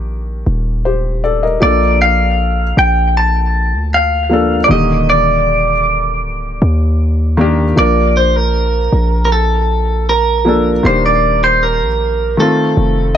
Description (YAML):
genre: contemporary R&B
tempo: 78 BPM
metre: 4/4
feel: straight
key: Bb major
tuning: A4 = 441 Hz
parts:
  - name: felt-muted upright piano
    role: accompaniment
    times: 0.0-13.2 s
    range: D3 to Eb5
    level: -17 LUFS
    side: left 2 dB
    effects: none
  - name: warm 808-style bass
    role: bass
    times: 0.0-13.2 s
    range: D1 to Eb2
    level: -15 LUFS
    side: equal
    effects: none
  - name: clean electric guitar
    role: melody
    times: 1.6-13.2 s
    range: A4 to A5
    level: -14 LUFS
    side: right 1 dB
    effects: tape echo
room: little or no reverb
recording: none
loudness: -11 LUFS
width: side -9 dB against mid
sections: 0.0-13.2 A section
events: none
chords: 0.0 Ebmaj7; 1.6 Bbmaj7; 4.7 Ebmaj7; 7.8 Bbmaj7; 10.8 Ebmaj7; 12.4 F7